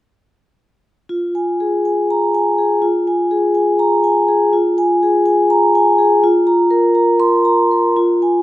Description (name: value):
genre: classical, contemporary piece for solo vibraphone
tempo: 247 BPM (eighths)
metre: 7/8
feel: rubato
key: F minor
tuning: A4 = 440 Hz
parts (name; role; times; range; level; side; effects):
- vibraphone with soft mallets; solo; 1.1-8.4 s; F4 to C6; -12 LUFS; equal; none
room: wet recital hall reverb, RT60 1.5 s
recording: none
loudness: -12 LUFS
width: side -16 dB against mid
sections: 1.1-8.0 A section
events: none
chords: 1.1 Fmadd11; 6.2 C7sus4/F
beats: | 1.10 1.35 1.60 1.85 2.10 2.35 2.59 | 2.83 3.07 3.31 3.56 3.80 4.04 4.28 | 4.53 4.77 5.02 5.26 5.50 5.74 5.98 | 6.22 6.46 6.70 6.95 7.20 7.45 7.70 | 7.96 8.21